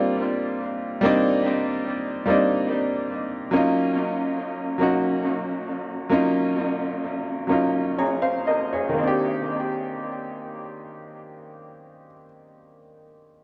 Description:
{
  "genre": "R&B",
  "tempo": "38-48 BPM (dotted quarters)",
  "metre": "6/8",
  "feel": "straight",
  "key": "unclear",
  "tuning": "A4 = 436 Hz",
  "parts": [
    { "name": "clear grand piano", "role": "accompaniment", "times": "0.0-13.4 s", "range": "Eb3 to Bb5", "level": "-24 LUFS", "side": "equal", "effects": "tape echo" }
  ],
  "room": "moderate spring reverb, RT60 1.3 s",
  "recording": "echo-heavy mix",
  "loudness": "-24 LUFS",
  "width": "mono",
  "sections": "0.0-9.0 A section; 9.0-12.1 B section",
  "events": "slowing down 3.5-9.0; grand piano fill 7.5-9.0",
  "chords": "0.0 Cm9; 3.5 Ebm9; 9.0 Cm9"
}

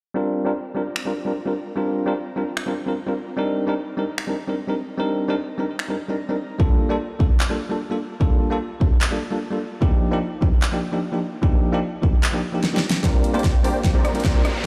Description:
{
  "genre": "future bass",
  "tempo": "149 BPM",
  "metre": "4/4",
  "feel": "half-time",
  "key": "Bb major",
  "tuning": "A4 = 440 Hz",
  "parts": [
    { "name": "bell-like tine electric piano", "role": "accompaniment", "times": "0.1-14.7 s", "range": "F3 to Bb4", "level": "-26 LUFS", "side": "equal", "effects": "sidechain pumping, low-pass filter, delay" },
    { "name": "pop drum kit", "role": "drums", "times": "1.0-14.5 s", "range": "finger snaps, handclaps, hi-hat, rim click, snare drum", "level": "-29 LUFS", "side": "equal", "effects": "none" },
    { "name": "electronic kick drum", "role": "drums", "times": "6.6-14.3 s", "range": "none", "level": "-21 LUFS", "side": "equal", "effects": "none" },
    { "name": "supersaw stab", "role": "riff", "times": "13.0-14.6 s", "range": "Bb3 to Bb5", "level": "-28 LUFS", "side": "equal", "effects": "cassette tape, sidechain pumping, low-pass filter, delay" },
    { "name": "riser", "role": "sound effects", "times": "13.6-14.7 s", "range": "none", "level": "-35 LUFS", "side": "equal", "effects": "none" }
  ],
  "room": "light reverb",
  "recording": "played on a big sound system in a bare room, stone room reverb",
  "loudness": "-22 LUFS",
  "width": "mono",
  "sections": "0.2-13.0 A section; 13.0-14.7 B section",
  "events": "filter sweep on tine electric piano 0.2-13.0; drum fill 12.6-13.0, 13.0-14.7; build-up 13.0-14.7; riser 13.6-14.7",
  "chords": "0.2 Bb69; 3.4 Cm9; 6.6 Gm9; 9.8 Ebmaj9; 13.0 Bb69"
}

